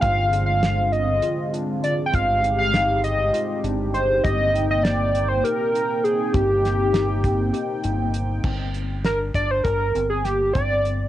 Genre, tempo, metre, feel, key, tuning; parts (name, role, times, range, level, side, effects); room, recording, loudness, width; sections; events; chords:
progressive instrumental, band music in an uneven meter; 200 BPM (eighths); 7/8; straight; G phrygian; A4 = 440 Hz
hollow square lead; melody; 0.0-11.1 s; G4 to G5; -21 LUFS; right 1 dB; chorus, cassette tape
dark analog pad; accompaniment; 0.0-8.4 s; D3 to G5; -26 LUFS; equal; chorus, phaser, cassette tape
overdriven tine electric piano; arpeggios; 0.0-11.1 s; D3 to G4; -33 LUFS; left 9 dB; fast tremolo, cassette tape, analog delay
deep dub fingered electric bass; bass; 0.0-11.1 s; G1; -25 LUFS; equal
damped 70s drum kit; drums; 0.0-11.0 s; crash cymbal, hi-hat, kick drum, snare drum; -26 LUFS; equal; cassette tape
little or no reverb; home recording on cassette; -19 LUFS; side -13 dB against mid
0.0-8.4 A section; 8.4-11.1 B section
analog synth lead solo 8.4-11.1
0.0 Fm13/G; 2.1 Fm7/G; 4.2 Abmaj9/G (rootless); 8.4 Gmadd11